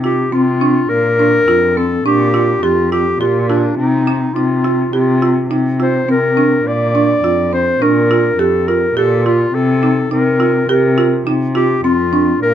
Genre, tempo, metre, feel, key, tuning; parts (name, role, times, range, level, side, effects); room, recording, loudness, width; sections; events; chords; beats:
contemporary instrumental, chamber music in an uneven meter; 104 BPM; 5/4; straight; Bb major; A4 = 440 Hz
warm clarinet; melody; 0.0-12.5 s; D4 to D5; -16 LUFS; left 3 dB
folk marimba with medium mallets; arpeggios; 0.0-12.3 s; C4 to G4; -16 LUFS; right 4 dB
muted cello; bass; 0.0-12.5 s; F2 to C3; -17 LUFS; left 1 dB
little or no reverb; minimal, uncompressed stereo recording; -12 LUFS; side -10 dB against mid
0.0-12.5 A section
0.0 F5/C; 0.9 Bb; 3.8 F5/C; 6.7 Bb; 9.5 Fsus4/C
0.33 | 0.90 1.48 2.06 2.63 3.21 | 3.79 4.36 4.94 5.51 6.09 | 6.66 7.24 7.81 8.39 8.97 | 9.54 10.12 10.69 11.27 11.85 | 12.42